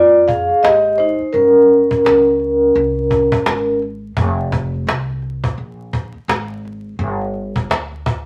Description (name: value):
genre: hip hop, jazz-hop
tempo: 85 BPM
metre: 4/4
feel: swing 60% on 16ths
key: F minor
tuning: A4 = 442 Hz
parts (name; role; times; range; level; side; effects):
- vibraphone with soft mallets; accompaniment; 0.0-3.8 s; Db4 to F5; -14 LUFS; equal; none
- upright bass; bass; 0.0-8.3 s; F1 to F2; -26 LUFS; equal; none
- cajon; drums; 0.3-8.3 s; none; -22 LUFS; equal; none
room: moderate studio reverb, RT60 0.7 s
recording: vinyl crackle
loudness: -16 LUFS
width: mono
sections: 0.0-8.3 A section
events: vibraphone solo 0.0-8.3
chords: 0.0 Ebmaj9; 1.3 Gdim; 2.8 Bbm9; 4.2 Fm; 7.0 G5